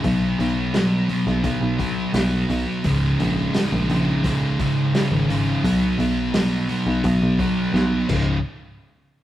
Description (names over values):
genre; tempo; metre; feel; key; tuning
classic rock; 86 BPM; 4/4; straight; unclear; A4 = 440 Hz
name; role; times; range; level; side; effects
sludgy distorted guitar; riff; 0.0-8.4 s; C#2 to B3; -21 LUFS; equal; overdrive
picked electric bass; bass; 0.0-8.4 s; C#1 to B1; -23 LUFS; equal; none
vintage drum kit; drums; 0.0-8.3 s; crash cymbal, hi-hat, kick drum, snare drum; -26 LUFS; equal; none
room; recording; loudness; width
moderate stone room reverb, RT60 1.4 s; rough rehearsal-room recording; -18 LUFS; side -13 dB against mid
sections
0.0-8.4 A section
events
drum fill 7.7-8.4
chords
0.0 B5; 2.8 C#5; 5.6 B5; 8.1 C#5; 8.4 N.C.